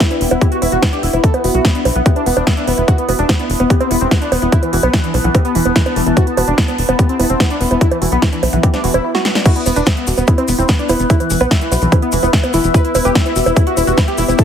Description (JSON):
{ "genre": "psychedelic trance", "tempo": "146 BPM", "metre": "4/4", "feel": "straight", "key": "E minor", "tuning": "A4 = 441 Hz", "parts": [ { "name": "wide unison lead", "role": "melody", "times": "0.0-14.4 s", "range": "E3 to B4", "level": "-19 LUFS", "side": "left 1 dB", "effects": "phaser, sidechain pumping, dub echo" }, { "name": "overtone-sweeping drone", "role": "sustained chords", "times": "0.0-14.4 s", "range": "B3 to B4", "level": "-22 LUFS", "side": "left 1 dB", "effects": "chorus, built-in reverb, phaser, sidechain pumping" }, { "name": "woody wave-folded pluck", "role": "riff", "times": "0.0-14.4 s", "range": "D4 to F#5", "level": "-23 LUFS", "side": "moving between left 2 dB and right 6 dB", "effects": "chorus, auto-pan, sidechain pumping, tape echo" }, { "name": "big-room dance drum kit", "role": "drums", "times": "0.0-14.4 s", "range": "bongos, crash cymbal, hi-hat, snare drum", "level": "-19 LUFS", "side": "right 2 dB", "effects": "none" }, { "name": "electronic kick drum", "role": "drums", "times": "0.0-14.4 s", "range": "none", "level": "-13 LUFS", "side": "equal", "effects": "none" }, { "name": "deep dark ambient pad", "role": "texture", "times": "0.0-14.4 s", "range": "E4 to A5", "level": "-26 LUFS", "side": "left 2 dB", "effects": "chorus, built-in reverb, sidechain pumping" }, { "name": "tight sequencer bass", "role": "bass", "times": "0.2-14.3 s", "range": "E1 to B1", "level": "-18 LUFS", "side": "equal", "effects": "tube saturation" }, { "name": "maracas", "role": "percussion", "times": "9.5-14.4 s", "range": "none", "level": "-26 LUFS", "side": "left 6 dB", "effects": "none" } ], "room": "light reverb", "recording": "heavily compressed radio sound, multiband compression", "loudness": "-12 LUFS", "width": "side -8 dB against mid", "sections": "0.0-9.5 A section; 9.5-14.4 B section", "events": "drum fill 9.1-9.5; drop 9.5-14.4", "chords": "0.0 E5", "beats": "0.00 0.41 0.82 | 1.24 1.65 2.06 2.47 | 2.88 3.29 3.70 4.11 | 4.52 4.93 5.35 5.76 | 6.17 6.58 6.99 7.40 | 7.81 8.22 8.63 9.04 | 9.46 9.87 10.28 10.69 | 11.10 11.51 11.92 12.33 | 12.74 13.15 13.56 13.98 | 14.39" }